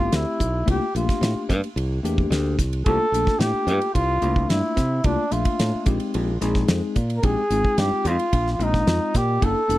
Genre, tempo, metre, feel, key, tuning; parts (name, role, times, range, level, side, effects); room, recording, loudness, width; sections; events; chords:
electric jazz fusion; 110 BPM; 4/4; straight; A4 = 440 Hz
breathy trumpet; melody; 0.0-9.8 s; D4 to Bb4; -24 LUFS; equal
bell-like tine electric piano; accompaniment; 0.0-9.8 s; Ab3 to E5; -27 LUFS; left 4 dB; wide subtle chorus
fingered electric bass; bass; 0.0-9.8 s; E1 to C3; -24 LUFS; equal
damped 70s drum kit; drums; 0.1-9.8 s; hi-hat, kick drum, ride cymbal, snare drum; -23 LUFS; equal
little or no reverb; dry, close 1970s-style studio recording; -19 LUFS; side -16 dB against mid
0.0-9.8 A section
0.0 G13sus4; 0.7 C13sus4; 5.9 Bb13sus4